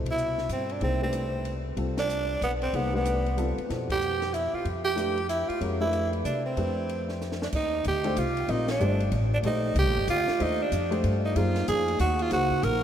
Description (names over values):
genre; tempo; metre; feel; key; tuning
modal jazz; 188 BPM; 3/4; swing 63% on 8ths; Eb lydian from 7.5 s; A4 = 439 Hz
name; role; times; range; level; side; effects
warm baby grand piano; accompaniment; 0.0-12.8 s; B2 to Eb5; -32 LUFS; left 2 dB; none
upright bass; bass; 0.0-12.8 s; G1 to C3; -29 LUFS; equal; none
growling tenor saxophone; melody; 0.1-12.8 s; B3 to Bb4; -28 LUFS; right 2 dB; none
compact cocktail drum kit; drums; 0.1-12.7 s; crash cymbal, hi-hat, kick drum, ride cymbal, snare drum; -40 LUFS; left 1 dB; none
room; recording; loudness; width
wet cathedral reverb, RT60 5.4 s; in a vast, echoing space; -24 LUFS; side -9 dB against mid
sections
0.0-7.5 A section; 7.5-12.8 B section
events
band accent 0.0, 1.9, 3.9, 8.6; drum fill 7.2-7.5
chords
0.0 Cmaj9; 3.7 Fmaj9; 7.5 Ebmaj9; 11.4 Gbmaj9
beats
0.18 0.50 | 0.82 1.14 1.46 | 1.77 2.09 2.41 | 2.73 3.05 3.37 | 3.69 4.01 4.33 | 4.65 4.97 5.29 | 5.61 5.93 6.25 | 6.57 6.89 7.21 | 7.53 7.85 8.17 | 8.48 8.80 9.12 | 9.44 9.76 10.08 | 10.40 10.72 11.04 | 11.36 11.68 12.00 | 12.32 12.63